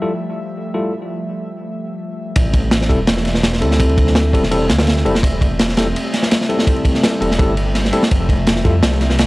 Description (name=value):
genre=drum and bass, jungle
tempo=167 BPM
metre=4/4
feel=straight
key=A minor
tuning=A4 = 441 Hz
part: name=airy breathy pad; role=sustained chords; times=0.0-9.3 s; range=F3 to E5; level=-24 LUFS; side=equal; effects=chorus
part: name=tine electric piano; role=stabs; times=0.0-8.7 s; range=G3 to A4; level=-21 LUFS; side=left 1 dB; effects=dub echo
part: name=dark detuned saw bass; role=bass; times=2.4-9.3 s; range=E1 to F2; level=-18 LUFS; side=equal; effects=none
part: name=crunchy breakbeat drum kit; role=drums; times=2.4-9.3 s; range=kick drum, ride cymbal, snare drum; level=-15 LUFS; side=equal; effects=none
room=little or no reverb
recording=dry, gritty hardware recording, cassette tape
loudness=-14 LUFS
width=side -20 dB against mid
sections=0.0-2.4 A section; 2.4-9.3 B section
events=break 0.9-2.4; drop 2.4-9.3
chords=0.0 Fmaj9; 2.4 Am7; 8.1 Fmaj9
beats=0.20 0.56 | 0.92 1.28 1.64 2.00 | 2.36 2.72 3.08 3.44 | 3.80 4.16 4.51 4.87 | 5.23 5.59 5.95 6.31 | 6.67 7.03 7.39 7.75 | 8.11 8.47 8.83 9.19